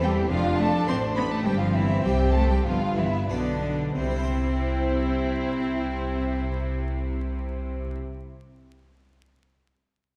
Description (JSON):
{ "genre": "classical, baroque-style concerto movement with solo episodes", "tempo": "90-108 BPM", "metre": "4/4", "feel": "straight", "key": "C major", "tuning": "A4 = 441 Hz", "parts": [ { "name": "rich cello", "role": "melody", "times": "0.0-7.9 s", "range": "D3 to C4", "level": "-32 LUFS", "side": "equal", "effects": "none" }, { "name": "warm chamber violin section", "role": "melody", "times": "0.0-7.9 s", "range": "C5 to C6", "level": "-37 LUFS", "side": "equal", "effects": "none" }, { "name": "warm studio violin section", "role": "second line", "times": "0.0-7.9 s", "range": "C4 to C5", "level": "-35 LUFS", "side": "equal", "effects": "none" }, { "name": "harpsichord", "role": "accompaniment", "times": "0.0-8.2 s", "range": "F2 to C5", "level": "-39 LUFS", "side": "equal", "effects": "none" }, { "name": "warm symphonic viola section", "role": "accompaniment", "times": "0.0-7.9 s", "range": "B3 to E4", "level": "-34 LUFS", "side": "equal", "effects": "none" }, { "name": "rich chamber double bass section", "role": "bass", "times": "0.0-7.9 s", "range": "F1 to E2", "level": "-30 LUFS", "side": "equal", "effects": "none" }, { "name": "rich studio cello section", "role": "bass", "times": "0.0-7.9 s", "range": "F2 to E3", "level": "-34 LUFS", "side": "equal", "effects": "none" } ], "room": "wet scoring stage reverb, RT60 1.9 s", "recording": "recorded in a church or concert hall, vinyl crackle", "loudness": "-25 LUFS", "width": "mono", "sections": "0.0-3.9 A section; 3.9-9.3 B section", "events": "slowing down 0.0-3.9", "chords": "0.3 F; 1.5 C5/G; 2.7 G; 3.9 C" }